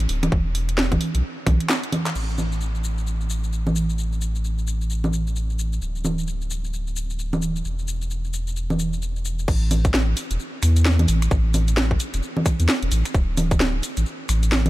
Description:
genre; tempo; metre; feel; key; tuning
UK garage, two-step garage; 131 BPM; 4/4; swing 61% on 16ths; unclear; A4 = 437 Hz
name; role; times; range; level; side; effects
saturated sub bass; bass; 0.0-14.7 s; D1 to E2; -22 LUFS; equal; none
garage drum kit; drums; 0.0-14.7 s; congas, crash cymbal, finger snaps, handclaps, hi-hat, shaker, snare drum; -25 LUFS; right 1 dB; overdrive
electronic kick drum; drums; 0.3-1.6, 9.5-13.6 s; none; -21 LUFS; equal; overdrive
room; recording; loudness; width
digital ambience; none; -20 LUFS; side -17 dB against mid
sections
0.0-2.2 A section; 2.2-9.5 B section; 9.5-14.7 C section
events
drum fill 1.7-2.2; drop 9.5-14.7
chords
none

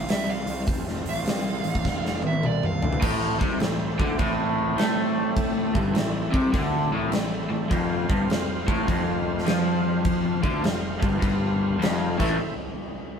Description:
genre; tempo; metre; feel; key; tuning
blues rock power trio and southern rock; 102 BPM; 4/4; swing 66% on 8ths; A minor; A4 = 441 Hz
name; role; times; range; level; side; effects
dark smooth lead guitar; second line; 0.0-3.0 s; D5 to F5; -31 LUFS; right 4 dB; overdrive
overdriven tonewheel organ; sustained chords; 0.0-12.5 s; A3 to F5; -34 LUFS; right 2 dB; chorus vibrato
fuzz picked electric bass; bass; 0.0-12.4 s; F1 to A2; -31 LUFS; equal; overdrive
huge arena drum kit; drums; 0.1-12.3 s; crash cymbal, hi-hat, kick drum, snare drum, toms; -26 LUFS; equal; none
crunchy overdriven guitar; riff; 3.0-12.4 s; F2 to A3; -24 LUFS; left 1 dB; none
room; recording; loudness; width
light reverb; band playing live in one room; -22 LUFS; side -7 dB against mid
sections
0.0-3.0 A section; 3.0-12.4 B section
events
lead electric guitar solo 0.0-3.0; drum fill 1.8-3.0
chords
0.0 F; 3.0 Am; 7.7 F5; 12.1 Am

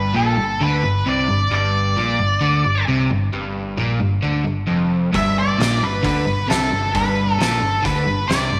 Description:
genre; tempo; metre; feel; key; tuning
blues rock power trio and southern rock; 133 BPM; 4/4; straight; G mixolydian; A4 = 440 Hz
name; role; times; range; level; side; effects
octave-fuzz lead guitar; melody; 0.0-8.6 s; A4 to E5; -23 LUFS; equal; distortion
crunchy overdriven guitar; riff; 0.0-8.6 s; F2 to D3; -22 LUFS; equal; none
modern bright picked electric bass; bass; 0.0-8.6 s; F1 to D2; -30 LUFS; equal; none
oversized low-tuned drum kit; drums; 5.1-8.4 s; hi-hat, kick drum, snare drum; -27 LUFS; equal; none
room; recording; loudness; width
wet echo chamber reverb, RT60 1.8 s, studio reverb; none; -19 LUFS; mono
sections
0.0-8.6 A section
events
none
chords
0.0 G

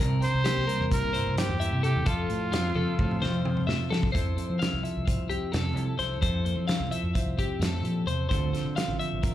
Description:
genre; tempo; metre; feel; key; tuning
math rock and midwest emo; 259 BPM (eighths); 9/8; straight; F major; A4 = 440 Hz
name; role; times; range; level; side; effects
mellow electric guitar; accompaniment; 0.0-9.3 s; F2 to C5; -31 LUFS; right 3 dB; none
twelve-string electric guitar; arpeggios; 0.0-9.3 s; F4 to F5; -33 LUFS; left 6 dB; slapback echo, digital delay
fingered electric bass; bass; 0.0-9.3 s; A1 to F3; -30 LUFS; left 1 dB; none
bright trumpet; melody; 0.2-3.7 s; F4 to C5; -32 LUFS; right 1 dB; slapback echo, digital delay
loose indie drum kit; drums; 0.2-9.3 s; hi-hat, kick drum, snare drum, toms; -30 LUFS; equal; none
room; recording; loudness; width
little or no reverb; live gig heard through the venue's PA, club reverb; -25 LUFS; side -12 dB against mid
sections
0.0-4.1 A section; 4.1-9.3 B section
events
drum fill 2.8-4.1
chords
0.0 C7; 2.1 F; 4.1 Fmaj7; 8.3 Dm7

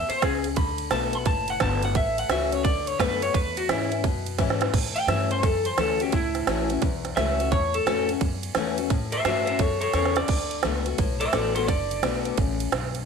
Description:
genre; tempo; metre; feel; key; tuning
rockabilly; 173 BPM; 4/4; swing 64% on 8ths; A mixolydian; A4 = 440 Hz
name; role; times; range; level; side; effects
electric guitar through a small old amp; melody; 0.0-12.4 s; E4 to B5; -26 LUFS; equal; tape echo
picked steel-string acoustic guitar; accompaniment; 0.0-13.1 s; E2 to F#4; -29 LUFS; left 14 dB; none
upright bass; bass; 0.0-13.1 s; F#1 to A2; -31 LUFS; equal; none
organic electronic drum kit; drums; 0.1-13.0 s; crash cymbal, kick drum, ride cymbal, snare drum; -27 LUFS; right 5 dB; none
room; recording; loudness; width
digital ambience; 1960s-style stereo; -22 LUFS; side -6 dB against mid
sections
0.0-4.7 A section; 4.7-13.1 B section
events
drum fill 4.4-4.7, 9.9-10.3; clean electric guitar solo 4.7-13.1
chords
0.0 E6; 0.6 D6; 2.0 A6; 2.7 D6; 3.3 E6; 4.7 A6; 10.3 D6

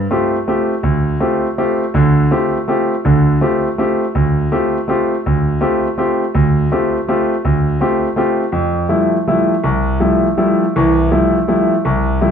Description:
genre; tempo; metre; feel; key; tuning
jazz; 164 BPM; 3/4; swing 66% on 8ths; F major from 8.5 s; A4 = 440 Hz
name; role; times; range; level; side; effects
clear concert grand piano; solo; 0.0-12.3 s; C2 to G4; -13 LUFS; equal; none
room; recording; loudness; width
wet large studio reverb, RT60 1.1 s; heard from further back in the room, nothing above 10.4 kHz; -13 LUFS; side -7 dB against mid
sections
0.0-8.5 A section; 8.5-12.3 B section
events
none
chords
0.0 G9sus4; 8.5 Fmaj9

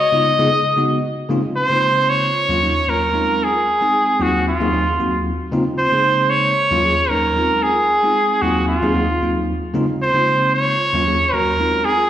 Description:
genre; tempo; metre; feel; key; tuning
jazz; 114 BPM; 4/4; swing 53% on 16ths; unclear; A4 = 440 Hz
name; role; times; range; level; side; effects
clear trumpet; melody; 0.0-12.1 s; F4 to Eb5; -16 LUFS; right 1 dB; plate reverb, slapback echo, tape echo
bell-like tine electric piano; accompaniment; 0.1-12.1 s; Eb2 to Ab4; -20 LUFS; left 1 dB; wide subtle chorus, plate reverb, slapback echo
room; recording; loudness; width
moderate club reverb, RT60 0.7 s; live gig heard through the venue's PA, recital hall reverb; -15 LUFS; side -11 dB against mid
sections
0.0-1.3 A section; 1.3-12.1 B section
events
none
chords
0.0 Db9sus4; 1.3 Dbmaj13; 2.3 Ebm9; 3.1 Fm7; 4.2 Ab13/Eb; 5.5 Dbmaj13; 6.6 Ebm7; 7.4 Fm7; 8.4 Ab13/Eb (rootless); 9.7 Dbmaj13; 10.8 Ebm9; 11.6 Fm7

